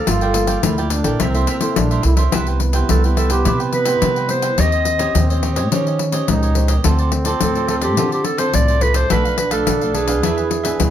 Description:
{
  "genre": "samba and choro",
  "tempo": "106 BPM",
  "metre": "4/4",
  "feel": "straight",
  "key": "unclear",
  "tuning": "A4 = 440 Hz",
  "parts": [
    { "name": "warm clarinet", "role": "melody", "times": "0.0-10.9 s", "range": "G4 to Eb5", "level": "-20 LUFS", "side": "right 1 dB", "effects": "none" },
    { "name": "cavaquinho", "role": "accompaniment", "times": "0.0-10.9 s", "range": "D4 to G5", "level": "-26 LUFS", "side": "right 8 dB", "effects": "none" },
    { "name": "nylon-string guitar", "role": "accompaniment", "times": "0.0-10.9 s", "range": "A2 to C5", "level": "-25 LUFS", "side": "left 3 dB", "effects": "none" },
    { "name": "breathy trombone", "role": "second line", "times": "0.1-10.9 s", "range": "B3 to F4", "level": "-24 LUFS", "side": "right 3 dB", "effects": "none" },
    { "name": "upright bass", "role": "bass", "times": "0.1-10.9 s", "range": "G1 to Eb3", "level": "-19 LUFS", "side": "equal", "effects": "none" },
    { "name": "pandeiro", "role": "percussion", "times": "0.1-10.9 s", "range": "none", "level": "-22 LUFS", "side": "left 8 dB", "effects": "none" }
  ],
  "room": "little or no reverb",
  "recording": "close, detailed microphones",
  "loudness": "-15 LUFS",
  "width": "side -10 dB against mid",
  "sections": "0.0-2.3 A section; 2.3-10.9 B section",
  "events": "none",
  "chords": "0.1 Gm9; 1.2 C6; 2.3 Cmaj7; 4.6 Eb6; 6.8 Dm7; 9.1 Bm7b5; 10.2 E7"
}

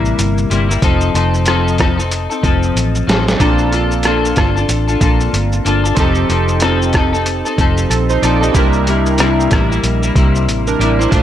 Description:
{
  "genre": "indie pop, bedroom pop",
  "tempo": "93 BPM",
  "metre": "4/4",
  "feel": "swing 60% on 16ths",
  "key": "unclear",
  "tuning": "A4 = 440 Hz",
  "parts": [
    { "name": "clean electric guitar", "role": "accompaniment", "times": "0.0-11.2 s", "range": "Bb2 to A4", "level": "-16 LUFS", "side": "left 4 dB", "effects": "analog chorus, vibrato effect" },
    { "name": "vintage muted fingered electric bass", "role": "bass", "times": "0.0-11.2 s", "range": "F1 to C2", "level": "-17 LUFS", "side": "right 1 dB", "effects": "none" },
    { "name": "lo-fi sampler-style drum kit", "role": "drums", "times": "0.1-11.2 s", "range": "hi-hat, kick drum, rim click, shaker, snare drum", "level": "-17 LUFS", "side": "right 1 dB", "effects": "overdrive" },
    { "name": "chorused retro synth keys", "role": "accompaniment", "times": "3.4-11.2 s", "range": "A3 to Eb5", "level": "-19 LUFS", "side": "right 7 dB", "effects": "cassette tape" }
  ],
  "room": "light reverb, digital ambience",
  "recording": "none",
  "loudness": "-12 LUFS",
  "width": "side -11 dB against mid",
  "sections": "0.0-11.2 A section",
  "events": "drum fill 2.8-3.4",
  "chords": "0.0 C7; 0.8 F7; 3.4 Bbmaj7; 6.0 F7; 8.5 C7"
}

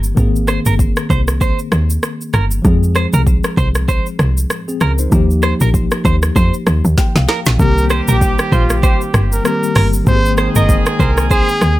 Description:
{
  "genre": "afrobeats",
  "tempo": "97 BPM",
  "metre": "4/4",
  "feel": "swing 58% on 16ths",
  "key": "unclear",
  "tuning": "A4 = 437 Hz",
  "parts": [
    { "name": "mellow tine electric piano", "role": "accompaniment", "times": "0.0-11.8 s", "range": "Eb3 to G5", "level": "-20 LUFS", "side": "left 3 dB", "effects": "medium stereo tremolo, plate reverb" },
    { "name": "woody log drum bass", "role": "bass", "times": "0.0-11.8 s", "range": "G1 to F2", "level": "-14 LUFS", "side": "equal", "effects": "none" },
    { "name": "afro-pop drum kit", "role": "drums", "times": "0.0-11.8 s", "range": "hi-hat, kick drum, rim click, shaker, snare drum", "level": "-16 LUFS", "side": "equal", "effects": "overdrive" },
    { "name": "direct-recorded clean electric guitar", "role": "riff", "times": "0.5-11.5 s", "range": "Bb4 to C5", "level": "-22 LUFS", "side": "right 5 dB", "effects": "lush chorus, ping-pong delay" },
    { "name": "clear trumpet", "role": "melody", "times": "7.6-11.8 s", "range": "F4 to Eb5", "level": "-19 LUFS", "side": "equal", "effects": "plate reverb, ping-pong delay" },
    { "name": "clear horn section", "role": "second line", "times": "7.6-11.8 s", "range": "Eb3 to Ab4", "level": "-24 LUFS", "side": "right 3 dB", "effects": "plate reverb" }
  ],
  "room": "light reverb",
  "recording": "none",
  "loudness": "-12 LUFS",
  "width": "side -16 dB against mid",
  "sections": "0.0-7.6 A section; 7.6-11.8 B section",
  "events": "tine electric piano fill 6.7-7.6; drum fill 7.0-7.6",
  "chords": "0.2 Abadd9; 2.6 Fm; 5.1 Ebadd9; 7.6 Cm7; 10.1 Abadd9"
}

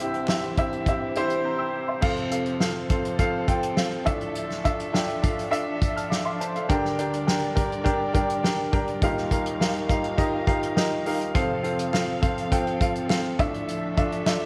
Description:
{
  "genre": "piano-driven pop",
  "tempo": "103 BPM",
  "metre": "4/4",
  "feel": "straight",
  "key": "F major",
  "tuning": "A4 = 440 Hz",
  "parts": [
    { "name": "clear upright piano", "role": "accompaniment", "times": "0.0-14.5 s", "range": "C2 to G6", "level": "-28 LUFS", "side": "equal", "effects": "none" },
    { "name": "dark studio string section", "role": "sustained chords", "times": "0.0-14.5 s", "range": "D3 to F5", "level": "-37 LUFS", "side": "equal", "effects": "none" },
    { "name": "unplugged drum kit", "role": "drums", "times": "0.1-14.4 s", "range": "crash cymbal, hi-hat, kick drum, snare drum", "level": "-29 LUFS", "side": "equal", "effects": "none" },
    { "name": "group handclap", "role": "percussion", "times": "0.3-0.4, 11.9-14.4 s", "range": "none", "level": "-43 LUFS", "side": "equal", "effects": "none" }
  ],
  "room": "light reverb, studio ambience",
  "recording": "none",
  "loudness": "-25 LUFS",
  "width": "mono",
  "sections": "0.0-2.0 A section; 2.0-14.5 B section",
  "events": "break 1.4-2.0",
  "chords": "0.0 C; 2.0 F; 4.1 Dmadd9; 6.7 Gm/D; 9.0 Ebadd9; 11.4 F; 13.4 Dmadd9"
}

